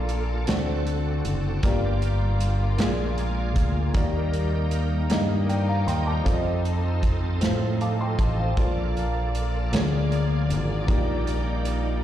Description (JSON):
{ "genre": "slow gospel", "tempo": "52 BPM (dotted quarters)", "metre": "6/8", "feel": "straight", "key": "Bb major", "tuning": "A4 = 440 Hz", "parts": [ { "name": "warm upright piano", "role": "accompaniment", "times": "0.0-12.0 s", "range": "G2 to D6", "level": "-29 LUFS", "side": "left 4 dB", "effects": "slapback echo" }, { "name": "bright tonewheel organ", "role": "sustained chords", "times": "0.0-12.0 s", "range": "Bb3 to Bb5", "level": "-35 LUFS", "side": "right 5 dB", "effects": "slow rotary speaker, overdrive, chorus vibrato" }, { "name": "muted studio string section", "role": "sustained chords", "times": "0.0-12.0 s", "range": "F3 to D5", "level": "-34 LUFS", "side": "right 2 dB", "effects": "none" }, { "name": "fingered electric bass", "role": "bass", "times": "0.0-12.0 s", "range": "F#1 to A2", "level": "-25 LUFS", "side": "equal", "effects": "none" }, { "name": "natural country drum kit", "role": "drums", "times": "0.1-11.8 s", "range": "hi-hat, kick drum, snare drum", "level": "-26 LUFS", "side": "right 1 dB", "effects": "none" } ], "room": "small room ambience", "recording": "live gig heard through the venue's PA, recital hall reverb", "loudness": "-22 LUFS", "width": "side -11 dB against mid", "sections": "0.0-12.0 A section", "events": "upright piano fill 7.4-8.6", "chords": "0.5 D7; 1.6 Gm7; 2.8 Bb7; 3.9 Ebmaj7; 6.3 F7; 8.6 Bbmaj7; 9.7 Bb7/D; 10.9 Ebmaj7/Bb", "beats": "0.48 | 1.63 2.79 | 3.95 5.10 | 6.26 7.42 | 8.57 9.73 | 10.88" }